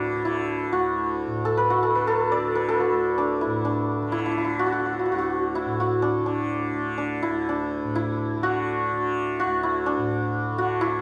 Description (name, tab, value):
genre	indian classical, Hindustani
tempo	125 BPM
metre	4/4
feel	straight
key	D raga bhupali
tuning	A4 = 438 Hz
part	santur	melody	0.0-11.0 s	D4 to E5	-25 LUFS	equal	none
part	tanpura	drone	0.0-11.0 s	D2 to D3	-33 LUFS	equal	none
room	wet recital hall reverb, RT60 1.7 s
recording	dark, warm production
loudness	-25 LUFS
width	mono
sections	0.0-11.0 A section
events	none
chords	none